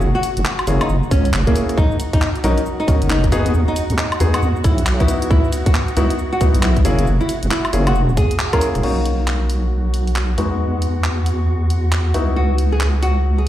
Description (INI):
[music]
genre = UK garage, two-step garage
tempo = 136 BPM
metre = 4/4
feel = swing 62% on 16ths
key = B major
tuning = A4 = 440 Hz
[part]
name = soft string machine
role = sustained chords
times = 0.0-13.5 s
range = F#4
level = -30 LUFS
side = right 1 dB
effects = ensemble chorus, sidechain pumping
[part]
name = deep soft wobble bass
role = bass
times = 0.0-13.5 s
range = E1 to F#2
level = -17 LUFS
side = equal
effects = chorus, tube saturation
[part]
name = garage drum kit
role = drums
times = 0.0-13.1 s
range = crash cymbal, handclaps, hi-hat, rim click, shaker, woodblock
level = -25 LUFS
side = equal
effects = none
[part]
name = nylon-string guitar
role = melody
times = 0.1-8.7, 12.4-13.5 s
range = A#3 to A#4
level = -23 LUFS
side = equal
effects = digital delay
[part]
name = warm baby grand piano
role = stabs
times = 0.7-13.5 s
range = G#3 to A#4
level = -24 LUFS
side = left 2 dB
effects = low-pass filter, digital delay
[part]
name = electronic kick drum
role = drums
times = 1.1-8.6 s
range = none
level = -16 LUFS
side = equal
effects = none
[sound]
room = light reverb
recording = played on a big sound system in a bare room, large studio reverb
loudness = -15 LUFS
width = side -12 dB against mid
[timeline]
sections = 0.0-8.8 A section; 8.8-13.5 B section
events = band accent 8.4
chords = 0.0 F#9; 1.8 Bmaj7; 3.3 Emaj9; 5.1 C#m11; 6.8 F#9; 8.8 Bmaj7; 10.4 Emaj9; 12.1 C#m11